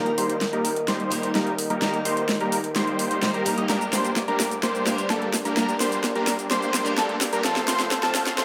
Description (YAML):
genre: EDM, festival progressive house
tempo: 128 BPM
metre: 4/4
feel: straight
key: unclear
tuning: A4 = 439 Hz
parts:
  - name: picked steel-string acoustic guitar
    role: accompaniment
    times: 0.0-8.4 s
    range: G2 to C5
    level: -33 LUFS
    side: equal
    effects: none
  - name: lush unison pad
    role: sustained chords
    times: 0.0-8.4 s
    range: A4 to Eb6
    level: -36 LUFS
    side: equal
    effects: none
  - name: unison lead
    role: arpeggios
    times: 0.0-8.4 s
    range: A5 to Eb6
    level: -31 LUFS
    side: equal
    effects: digital delay
  - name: supersaw chords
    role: riff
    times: 0.0-8.4 s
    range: F3 to Eb5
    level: -29 LUFS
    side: equal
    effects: cassette tape, low-pass filter, digital delay
  - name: detuned saw bass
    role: bass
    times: 0.0-8.4 s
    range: Eb1 to G2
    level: -40 LUFS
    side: equal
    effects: none
  - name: big-room dance drum kit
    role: drums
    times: 0.1-8.4 s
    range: cabasa, hi-hat, snare drum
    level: -29 LUFS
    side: equal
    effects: none
  - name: riser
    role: sound effects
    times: 4.9-8.4 s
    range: none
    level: -43 LUFS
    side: equal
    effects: none
room: moderate digital room reverb, RT60 1.2 s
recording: high-pass filter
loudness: -24 LUFS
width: mono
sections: 0.0-8.4 A section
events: build-up 0.0-8.4; drum fill 0.0-8.4; filter sweep on supersaw synth 0.0-8.4; filter sweep on analog synth lead 0.0-8.4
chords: 0.0 Eb; 3.7 Gm; 7.4 F